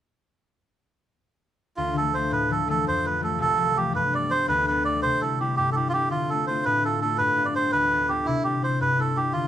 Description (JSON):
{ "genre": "celtic folk, Celtic jig", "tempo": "111 BPM (dotted quarters)", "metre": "6/8", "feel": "straight", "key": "D dorian", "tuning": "A4 = 439 Hz", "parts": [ { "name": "melodica", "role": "melody", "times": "1.8-9.5 s", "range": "E4 to D5", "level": "-23 LUFS", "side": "right 2 dB", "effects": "none" }, { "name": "concert harp", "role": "accompaniment", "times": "1.8-9.5 s", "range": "C2 to F4", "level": "-26 LUFS", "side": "left 4 dB", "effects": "none" } ], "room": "moderate studio reverb, RT60 0.6 s", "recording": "none", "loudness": "-21 LUFS", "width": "side -11 dB against mid", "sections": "1.8-9.5 A section", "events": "none", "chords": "1.8 Dm; 2.9 Fadd9; 3.9 Gadd9; 5.0 C; 6.1 Dm; 7.2 G; 8.3 C" }